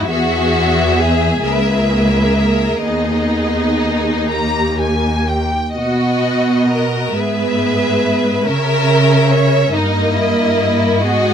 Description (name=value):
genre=classical, slow romantic movement for string orchestra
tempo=40-48 BPM (dotted quarters)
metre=6/8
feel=rubato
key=unclear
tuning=A4 = 440 Hz
part: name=warm symphonic violin section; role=melody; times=0.0-11.3 s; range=D#5 to A#5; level=-21 LUFS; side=left 2 dB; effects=none
part: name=warm symphonic violin section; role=second line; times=0.0-11.3 s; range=D#4 to C#5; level=-19 LUFS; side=equal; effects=none
part: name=rich symphonic viola section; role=accompaniment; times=0.0-11.3 s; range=A#3 to A#4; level=-19 LUFS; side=right 1 dB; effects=none
part: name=dark symphonic cello section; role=bass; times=0.0-11.3 s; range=C#2 to C#3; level=-17 LUFS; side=right 1 dB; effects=none
room=little or no reverb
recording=close, detailed microphones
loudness=-13 LUFS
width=side -8 dB against mid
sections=0.0-11.3 A section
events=none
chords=0.1 E; 1.4 A#m7b5/C#; 2.8 G#m/D#; 4.3 D#; 5.8 B; 7.2 E/G#; 8.5 A#dim/C#; 9.7 D#/G